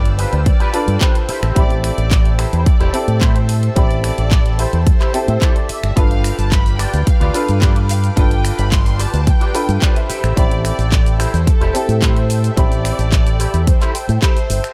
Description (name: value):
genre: nu-disco, nu disco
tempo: 109 BPM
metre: 4/4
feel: straight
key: A minor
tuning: A4 = 438 Hz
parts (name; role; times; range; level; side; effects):
- warm studio violin section; melody; 0.0-14.7 s; A4 to C6; -29 LUFS; equal; tape echo
- bright baby grand piano; accompaniment; 0.0-13.9 s; C4 to B5; -26 LUFS; equal; sidechain pumping, tape echo
- lush unison pad; sustained chords; 0.0-14.7 s; A4 to E6; -33 LUFS; equal; chorus, vintage 12-bit sampler grit, sidechain pumping
- fingered electric bass with an envelope filter; bass; 0.0-14.6 s; E1 to A2; -19 LUFS; equal; none
- pop drum kit; drums; 0.1-14.7 s; finger snaps, handclaps, hi-hat, shaker; -28 LUFS; equal; none
- electric guitar with an envelope filter; riff; 0.2-14.7 s; D4 to G5; -29 LUFS; equal; ensemble chorus
- electronic kick drum; drums; 0.5-14.3 s; none; -16 LUFS; equal; none
room: light reverb, digital ambience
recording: none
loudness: -15 LUFS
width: mono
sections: 0.0-14.7 A section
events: clean electric guitar fill 4.9-6.0, 9.5-10.4, 13.7-14.7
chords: 0.0 G7; 1.3 Am7; 6.0 G7; 10.1 Am7